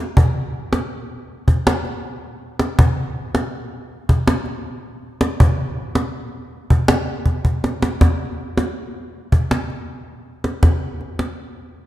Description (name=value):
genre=world meditative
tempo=161 BPM (eighths)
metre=7/8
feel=straight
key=none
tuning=none
part: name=cajon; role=percussion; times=0.2-11.4 s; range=none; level=-17 LUFS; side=equal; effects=none
room=wet concert hall reverb, RT60 2.3 s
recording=dark, warm production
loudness=-17 LUFS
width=side -14 dB against mid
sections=0.0-8.0 A section; 8.0-11.9 B section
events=drum fill 7.3-8.0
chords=none